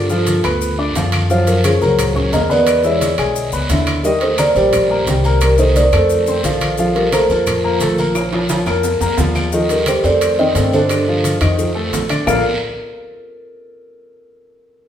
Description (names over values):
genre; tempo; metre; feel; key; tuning
Afro-Cuban jazz; 175 BPM; 4/4; straight; Bb major; A4 = 440 Hz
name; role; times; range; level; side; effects
kalimba; melody; 0.0-12.4 s; G4 to Eb5; -18 LUFS; equal; none
breathy trombone; second line; 0.0-12.4 s; D3 to C4; -21 LUFS; right 2 dB; none
warm baby grand piano; accompaniment; 0.0-12.4 s; D3 to D6; -20 LUFS; left 3 dB; none
upright bass; bass; 0.0-12.4 s; Bb1 to G2; -20 LUFS; equal; none
congas; percussion; 0.1-12.4 s; none; -26 LUFS; equal; none
maracas; percussion; 0.1-12.4 s; none; -31 LUFS; left 5 dB; none
guiro; percussion; 0.3-12.4 s; none; -29 LUFS; right 2 dB; none
timbales; percussion; 0.3-12.4 s; none; -26 LUFS; right 3 dB; none
claves; percussion; 0.4-12.4 s; none; -30 LUFS; left 6 dB; none
room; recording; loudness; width
wet stone room reverb, RT60 1.2 s; band playing live in one room; -13 LUFS; side -10 dB against mid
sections
0.0-9.5 A section; 9.5-12.3 B section; 12.3-13.6 C section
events
drum fill 8.2-9.5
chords
0.0 G9; 1.3 Gbmaj7; 2.7 E7; 4.0 Eb; 5.4 Cm7; 6.1 F; 6.8 Bb5; 9.5 Ebadd9; 10.2 F13; 10.9 G5; 11.6 F6; 12.3 Bbmaj7